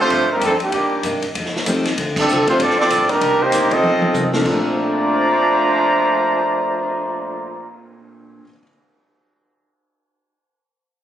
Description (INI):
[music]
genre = jazz, big band swing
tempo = 193 BPM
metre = 4/4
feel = swing 60% on 8ths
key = Bb major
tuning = A4 = 441 Hz
[part]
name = mellow trumpet section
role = melody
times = 0.0-7.7 s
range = G3 to Bb5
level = -16 LUFS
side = equal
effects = none
[part]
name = clear trombone section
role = second line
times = 0.0-7.7 s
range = Bb2 to Eb4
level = -25 LUFS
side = right 2 dB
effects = none
[part]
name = clear baby grand piano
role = accompaniment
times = 0.0-8.7 s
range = Bb2 to C7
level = -24 LUFS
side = left 1 dB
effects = none
[part]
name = upright bass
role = bass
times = 0.0-8.4 s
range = G1 to C3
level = -32 LUFS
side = equal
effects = none
[part]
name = picked steel-string acoustic guitar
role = accompaniment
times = 0.1-8.5 s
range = F2 to C5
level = -28 LUFS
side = left 3 dB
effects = none
[part]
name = swinging big-band drum kit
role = drums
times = 0.1-6.9 s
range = crash cymbal, cymbal swell, hi-hat, kick drum, ride cymbal, snare drum, toms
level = -25 LUFS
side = equal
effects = none
[sound]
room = moderate large studio reverb, RT60 1.1 s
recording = recorded on a phone in the room, club reverb, compression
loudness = -15 LUFS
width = side -10 dB against mid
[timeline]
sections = 0.0-4.5 A section; 4.5-6.9 B section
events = band accent 2.1; drum fill 3.8-4.5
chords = 0.1 G9sus4; 0.7 Cm9; 1.4 F7; 2.0 Dm7; 2.6 G9sus4; 3.2 Cm9; 3.8 F7; 4.5 Bbmaj9